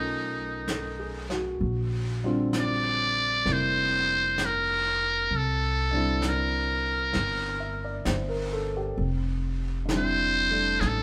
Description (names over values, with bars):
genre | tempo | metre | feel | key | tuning
jazz ballad | 65 BPM | 4/4 | swing 68% on 8ths | unclear | A4 = 440 Hz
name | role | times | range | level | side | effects
trumpet with metal mute | melody | 0.0-11.0 s | Eb4 to D5 | -28 LUFS | equal | none
warm concert grand piano | accompaniment | 0.0-11.0 s | D3 to E5 | -34 LUFS | equal | none
upright bass | bass | 0.0-11.0 s | F1 to C2 | -33 LUFS | equal | none
vintage brush drum kit | drums | 0.7-11.0 s | brushed snare drum, hi-hat, snare drum | -39 LUFS | equal | none
room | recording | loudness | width
moderate studio reverb, RT60 0.7 s | band playing live in one room | -27 LUFS | mono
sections
0.0-11.0 A section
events
none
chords
0.0 B9; 1.6 Bbadd9; 5.3 C9; 9.0 Fmaj9